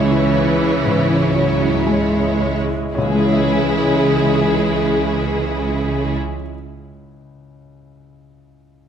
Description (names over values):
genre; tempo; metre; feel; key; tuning
classical; 54-64 BPM; 4/4; rubato; C# minor; A4 = 440 Hz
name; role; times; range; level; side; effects
clear baby grand piano; melody; 0.0-8.9 s; C#2 to E5; -22 LUFS; left 1 dB; none
warm studio violin section; melody; 0.0-6.2 s; G#4 to C#5; -28 LUFS; left 5 dB; none
mellow hollow concert flute; second line; 0.0-6.2 s; G#4 to C#5; -25 LUFS; equal; none
rich studio violin section; second line; 0.0-6.2 s; E4; -25 LUFS; equal; none
rich studio viola section; accompaniment; 0.0-6.2 s; E3 to G#3; -22 LUFS; right 2 dB; none
mellow French horn section; sustained chords; 0.0-6.2 s; E3 to C#4; -24 LUFS; left 4 dB; none
rich studio double bass section; bass; 0.0-6.2 s; C#2; -25 LUFS; right 5 dB; none
warm studio cello section; bass; 0.0-6.2 s; C#3; -23 LUFS; right 4 dB; none
room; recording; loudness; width
moderate scoring stage reverb, RT60 1.6 s; none; -15 LUFS; side -8 dB against mid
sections
0.0-2.9 A section; 2.9-7.3 B section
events
slowing down 0.0-2.9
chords
0.0 C#m